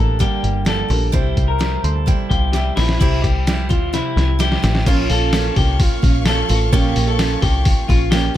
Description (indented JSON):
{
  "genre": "jangly indie pop",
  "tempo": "129 BPM",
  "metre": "4/4",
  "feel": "straight",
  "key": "unclear",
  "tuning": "A4 = 440 Hz",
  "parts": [
    { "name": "picked steel-string acoustic guitar", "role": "accompaniment", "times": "0.0-8.4 s", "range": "G2 to F4", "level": "-25 LUFS", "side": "right 7 dB", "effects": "none" },
    { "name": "warm upright piano", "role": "accompaniment", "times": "0.0-8.4 s", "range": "Db4 to C6", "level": "-30 LUFS", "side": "right 1 dB", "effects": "none" },
    { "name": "electric guitar through a small old amp", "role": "arpeggios", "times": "0.0-8.3 s", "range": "E4 to Bb4", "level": "-23 LUFS", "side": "left 3 dB", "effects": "digital delay" },
    { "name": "deep dub picked electric bass", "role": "bass", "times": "0.0-8.3 s", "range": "G1 to D2", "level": "-18 LUFS", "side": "equal", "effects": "none" },
    { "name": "lo-fi sampler-style drum kit", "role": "drums", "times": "0.2-8.2 s", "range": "crash cymbal, hi-hat, kick drum, snare drum", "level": "-18 LUFS", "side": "equal", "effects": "none" },
    { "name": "warm studio string section", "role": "sustained chords", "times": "4.9-8.4 s", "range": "Bb3 to Db6", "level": "-30 LUFS", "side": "left 1 dB", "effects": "none" }
  ],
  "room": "little or no reverb",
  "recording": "none",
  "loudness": "-14 LUFS",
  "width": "side -12 dB against mid",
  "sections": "0.0-3.0 A section; 3.0-4.9 B section; 4.9-8.4 C section",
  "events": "upright piano fill 1.6-3.0; drum fill 2.5-3.0, 3.9-4.9",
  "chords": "0.0 Gm; 1.1 C; 4.9 Bbm"
}